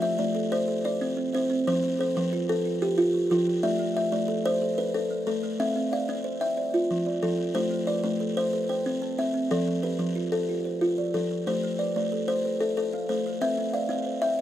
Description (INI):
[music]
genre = southern african traditional, mbira-style interlocking cycle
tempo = 122 BPM (dotted quarters)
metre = 12/8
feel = straight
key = C major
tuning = A4 = 439 Hz
[part]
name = buzzing kalimba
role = arpeggios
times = 0.0-14.4 s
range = F3 to F5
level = -25 LUFS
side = left 1 dB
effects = none
[part]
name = kalimba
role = arpeggios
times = 0.0-14.4 s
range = F3 to A5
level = -31 LUFS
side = right 7 dB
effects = slapback echo
[sound]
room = light reverb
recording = recorded outdoors, with no room sound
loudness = -24 LUFS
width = side -12 dB against mid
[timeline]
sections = 0.0-5.6 A section; 5.6-14.4 A section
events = none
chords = 0.0 Am; 0.7 C; 1.7 F; 3.6 Am; 5.6 C; 6.6 F; 7.5 Am; 8.5 C; 9.5 F; 13.4 C